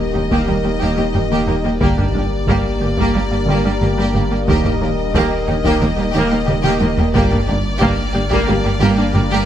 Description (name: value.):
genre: cinematic, hybrid orchestral and electronic film score.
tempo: 90 BPM.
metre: 4/4.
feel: straight.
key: G minor.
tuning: A4 = 440 Hz.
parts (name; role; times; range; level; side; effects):
rich chamber violin section; melody; 0.0-9.5 s; D5 to Eb5; -26 LUFS; left 4 dB; none.
dark French horn section; sustained chords; 0.0-8.7 s; Bb3 to G4; -26 LUFS; left 6 dB; none.
deep dark ambient pad; sustained chords; 0.0-9.5 s; G3 to Bb4; -25 LUFS; right 1 dB; chorus, built-in reverb.
warm sub bass; bass; 0.0-9.5 s; Eb1 to G1; -24 LUFS; equal; none.
warm symphonic violin section; second line; 0.1-9.5 s; G4; -25 LUFS; right 2 dB; none.
rich symphonic viola section; accompaniment; 0.1-9.5 s; Bb3; -22 LUFS; right 1 dB; none.
clear symphonic double bass section; bass; 0.1-9.2 s; G1 to Eb2; -22 LUFS; right 2 dB; none.
warm symphonic cello section; bass; 0.1-9.4 s; Eb2 to G2; -23 LUFS; right 1 dB; none.
tight sequenced synth; arpeggios; 0.2-9.4 s; Eb3 to G4; -27 LUFS; equal; none.
solo taiko drums; drums; 0.3-9.5 s; none; -22 LUFS; equal; none.
room: light reverb.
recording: close, detailed microphones.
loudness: -14 LUFS.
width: side -10 dB against mid.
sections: 0.0-9.5 A section.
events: drum fill 6.5-7.1.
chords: 0.0 Eb; 1.8 Gm; 4.5 Eb; 7.1 Gm.